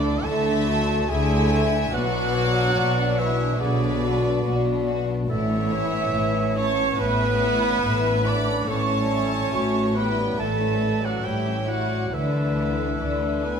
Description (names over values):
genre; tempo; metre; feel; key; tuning
cinematic; 71 BPM; 4/4; rubato; A major; A4 = 436 Hz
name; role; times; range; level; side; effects
dark studio violin section; melody; 0.0-13.6 s; C#4 to F#4; -34 LUFS; left 2 dB; none
clear studio violin section; second line; 0.0-13.6 s; A4 to B5; -34 LUFS; left 2 dB; none
large flute ensemble; second line; 0.0-13.6 s; D5 to D6; -33 LUFS; right 1 dB; none
warm cor anglais; second line; 0.0-13.6 s; B4 to A5; -29 LUFS; right 3 dB; none
warm studio viola section; accompaniment; 0.0-13.6 s; D4 to D5; -30 LUFS; right 3 dB; none
clear French horn section; sustained chords; 0.0-13.6 s; D3 to F#4; -29 LUFS; equal; none
concert harp; arpeggios; 0.0-13.6 s; A2 to E5; -32 LUFS; left 8 dB; none
dark studio cello section; bass; 0.0-13.6 s; A2 to D3; -28 LUFS; left 1 dB; none
dark studio double bass section; bass; 0.0-13.6 s; A1 to D2; -27 LUFS; right 1 dB; none
dark clarinet; second line; 0.2-13.6 s; F#4 to D5; -31 LUFS; left 1 dB; none
room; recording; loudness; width
wet stone room reverb, RT60 1.4 s; none; -20 LUFS; side -6 dB against mid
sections
0.0-13.6 A section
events
none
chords
0.0 Dsus2; 1.9 Bm; 5.3 Aadd9; 8.7 A7; 12.1 Dsus2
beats
0.24 1.09 | 1.93 2.77 3.61 4.45 | 5.29 6.14 7.00 7.84 | 8.69 9.54 10.39 11.25 | 12.13 13.00